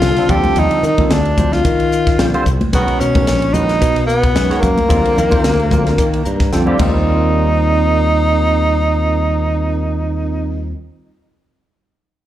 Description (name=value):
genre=electric jazz fusion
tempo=111 BPM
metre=4/4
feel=swing 55% on 16ths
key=Eb lydian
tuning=A4 = 440 Hz
part: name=breathy tenor saxophone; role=melody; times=0.0-10.7 s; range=A#3 to G4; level=-16 LUFS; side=equal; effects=slapback echo
part: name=barky tine electric piano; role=accompaniment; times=0.0-10.7 s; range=D3 to Bb5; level=-21 LUFS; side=right 2 dB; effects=ensemble chorus, slapback echo
part: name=modern bright fingered electric bass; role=bass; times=0.0-10.7 s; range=Bb1 to Eb3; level=-17 LUFS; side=equal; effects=none
part: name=crisp fusion drum kit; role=drums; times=0.0-6.9 s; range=crash cymbal, hi-hat, kick drum, ride cymbal, snare drum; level=-18 LUFS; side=equal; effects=none
part: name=congas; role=percussion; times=0.3-7.3 s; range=none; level=-22 LUFS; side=left 1 dB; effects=none
room=little or no reverb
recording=live gig heard through the venue's PA, club reverb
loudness=-12 LUFS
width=side -12 dB against mid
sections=0.0-7.1 A section; 7.1-11.4 B section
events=tine electric piano fill 6.0-7.1; drum fill 6.5-7.1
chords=0.3 Ebmaj9#11; 2.7 Bmaj9; 4.9 Ebmaj9; 6.8 Ebadd9